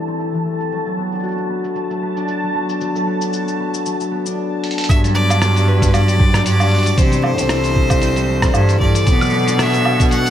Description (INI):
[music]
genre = folktronica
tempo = 115 BPM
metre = 4/4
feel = swing 56% on 16ths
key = unclear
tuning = A4 = 440 Hz
[part]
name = concert harp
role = arpeggios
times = 0.0-10.3 s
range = E3 to F#4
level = -20 LUFS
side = left 2 dB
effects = tape echo
[part]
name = backwards swelling texture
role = texture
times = 0.0-4.4 s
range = A5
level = -26 LUFS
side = right 2 dB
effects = built-in reverb, ensemble chorus
[part]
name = lo-fi sampler-style drum kit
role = drums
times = 0.1-10.3 s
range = hi-hat, rim click, shaker, woodblock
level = -23 LUFS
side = right 1 dB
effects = none
[part]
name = clear violin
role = melody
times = 4.9-10.3 s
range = B4 to F#5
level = -20 LUFS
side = equal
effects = tape echo
[part]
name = clear cello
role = bass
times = 4.9-10.3 s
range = C2 to C3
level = -16 LUFS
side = right 1 dB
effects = tube saturation
[part]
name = electronic kick drum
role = drums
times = 4.9-10.1 s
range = none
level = -16 LUFS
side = right 1 dB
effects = none
[sound]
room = light reverb, digital ambience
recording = low-pass filter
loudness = -14 LUFS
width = side -10 dB against mid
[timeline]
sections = 0.0-4.9 A section; 4.9-10.3 B section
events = filter sweep on drum 0.0-4.9; filter sweep on harp 0.0-4.9; filter sweep 0.0-4.9; drum fill 4.6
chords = 0.0 C6; 0.7 Bm7; 4.9 Gmaj7; 7.0 C6; 9.1 Bm7